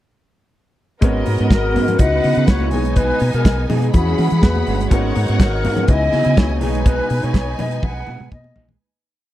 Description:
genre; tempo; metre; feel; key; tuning
disco; 123 BPM; 4/4; straight; unclear; A4 = 442 Hz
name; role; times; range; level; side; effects
warm symphonic string section; second line; 1.0-8.8 s; B3 to B5; -26 LUFS; equal; none
electric guitar at the edge of break-up; accompaniment; 1.0-8.8 s; G#3 to G#4; -26 LUFS; right 9 dB; none
warm grand piano; accompaniment; 1.0-8.8 s; B2 to C#5; -26 LUFS; left 4 dB; none
warm French horn section; sustained chords; 1.0-8.8 s; C#3 to D#5; -29 LUFS; equal; none
deep dub fingered electric bass; bass; 1.0-8.8 s; G1 to E3; -20 LUFS; equal; tube saturation
damped 70s drum kit; drums; 1.0-8.8 s; hi-hat, kick drum, snare drum, toms; -14 LUFS; equal; none
congas; percussion; 1.0-8.6 s; none; -28 LUFS; left 6 dB; none
alto flute; melody; 1.5-8.7 s; G#4 to F#5; -22 LUFS; left 3 dB; none
room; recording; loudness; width
little or no reverb; dry, close 1970s-style studio recording; -14 LUFS; side -14 dB against mid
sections
1.0-8.8 pre-chorus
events
fade-out 6.9-8.8; drum fill 7.8-8.8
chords
1.0 G#m11; 2.0 C#m11; 2.7 B6; 3.9 E69; 4.9 G#m11; 5.9 C#m11; 6.6 B6

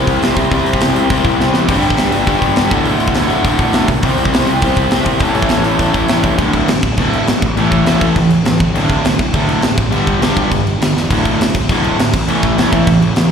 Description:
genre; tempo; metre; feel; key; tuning
punk rock; 204 BPM; 4/4; straight; unclear; A4 = 444 Hz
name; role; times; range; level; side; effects
distorted electric guitar; riff; 0.0-13.3 s; D2 to C4; -18 LUFS; right 10 dB; distortion, slapback echo
overdriven semi-hollow guitar; riff; 0.0-13.3 s; D2 to C5; -16 LUFS; left 9 dB; slapback echo
fuzz picked electric bass; bass; 0.0-13.3 s; D1 to A2; -19 LUFS; right 1 dB; overdrive
tight metal drum kit; drums; 0.1-13.2 s; crash cymbal, hi-hat, kick drum, snare drum; -16 LUFS; right 1 dB; none
room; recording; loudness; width
little or no reverb; live gig heard through the venue's PA, recital hall reverb; -11 LUFS; side -7 dB against mid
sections
0.0-6.4 A section; 6.4-13.3 B section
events
drum fill 1.4, 11.0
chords
0.0 C; 1.7 G; 2.7 D; 4.0 C; 5.2 A; 6.4 D5; 7.4 A5; 8.6 D5; 9.8 G5; 11.1 D5; 12.1 A5

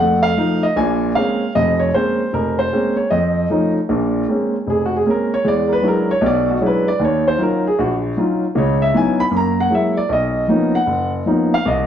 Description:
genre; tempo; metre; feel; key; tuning
solo jazz; 154 BPM; 4/4; swing 65% on 8ths; Bb minor; A4 = 440 Hz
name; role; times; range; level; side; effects
warm concert grand piano; solo; 0.0-11.9 s; F1 to Cb6; -15 LUFS; equal; none
room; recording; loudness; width
moderate studio reverb, RT60 0.9 s; heard from further back in the room; -15 LUFS; side -9 dB against mid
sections
0.0-3.9 A section; 3.9-11.9 B section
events
grand piano solo 3.9-11.9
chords
0.0 F7; 0.8 Bbm9; 3.1 Faug7; 3.9 Bbm9; 5.4 E13; 7.0 Ebm9; 8.5 Dbm11; 9.3 Gb9; 10.1 Bmaj9#11

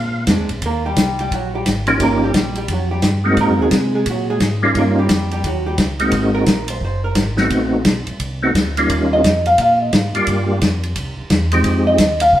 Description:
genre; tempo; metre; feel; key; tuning
soul jazz organ trio; 174 BPM; 4/4; swing 63% on 8ths; Eb mixolydian; A4 = 440 Hz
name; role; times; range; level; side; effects
percussive tonewheel organ; melody; 0.0-12.0 s; F3 to F5; -17 LUFS; equal; slow rotary speaker, chorus vibrato
mellow tonewheel organ; bass; 0.0-12.4 s; Gb1 to C3; -21 LUFS; equal; overdrive, chorus vibrato, slow rotary speaker
vintage hollow-body jazz guitar; accompaniment; 0.3-12.4 s; Gb3 to F5; -18 LUFS; right 1 dB; none
warm soul drum kit; drums; 0.3-12.4 s; hi-hat, kick drum, ride cymbal, snare drum; -19 LUFS; equal; none
room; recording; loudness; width
wet stone room reverb, RT60 1.2 s; band playing live in one room; -14 LUFS; side -12 dB against mid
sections
0.6-12.4 A section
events
hollow-body jazz guitar solo 0.6-12.4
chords
0.0 Bb9; 0.6 Eb9; 3.4 Ab9; 4.8 Eb9; 6.1 Ab9; 7.5 Adim7; 8.9 Eb9; 10.3 Gm7; 11.0 C; 11.6 Fm7

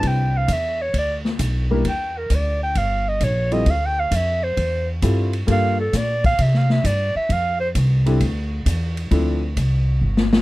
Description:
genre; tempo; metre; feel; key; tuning
jazz, big band swing; 132 BPM; 4/4; swing 68% on 8ths; C major; A4 = 440 Hz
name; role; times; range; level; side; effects
warm clarinet; melody; 0.0-7.7 s; A4 to G5; -22 LUFS; right 1 dB; none
clear grand piano; accompaniment; 0.0-9.4 s; F3 to B4; -23 LUFS; left 2 dB; none
upright bass; bass; 0.0-10.4 s; G1 to C3; -20 LUFS; equal; none
swinging big-band drum kit; drums; 0.0-10.4 s; hi-hat, kick drum, ride cymbal, snare drum; -25 LUFS; left 1 dB; none
room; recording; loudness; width
little or no reverb; dark, warm production; -18 LUFS; side -18 dB against mid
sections
0.0-10.4 A section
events
clarinet solo 0.0-10.4; drum fill 10.0-10.4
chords
0.0 Cmaj9; 1.8 Gm6; 2.8 Gm9b5; 3.7 Dm11; 5.5 Gm7; 6.4 C5; 7.3 Fmaj7(no3); 9.1 Dm7

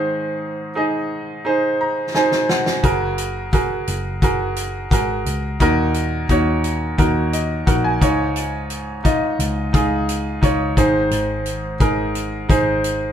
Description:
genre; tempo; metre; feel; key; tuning
piano-driven pop; 87 BPM; 4/4; straight; unclear; A4 = 445 Hz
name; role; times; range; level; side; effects
clear baby grand piano; accompaniment; 0.0-13.1 s; Ab2 to Bb5; -19 LUFS; right 1 dB; none
natural country drum kit; drums; 2.1-13.0 s; hi-hat, kick drum, snare drum; -20 LUFS; left 1 dB; none
vintage muted picked electric bass; bass; 2.8-13.1 s; Gb1 to Eb2; -24 LUFS; left 1 dB; none
room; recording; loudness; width
moderate studio reverb, RT60 0.8 s; band playing live in one room; -17 LUFS; side -9 dB against mid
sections
0.0-13.1 A section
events
grand piano fill 1.5-2.8, 7.0-8.4; drum fill 2.1-2.8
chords
0.0 Ab; 2.8 Gbadd9; 5.6 Ebm; 8.0 Dbadd9; 10.8 Ab

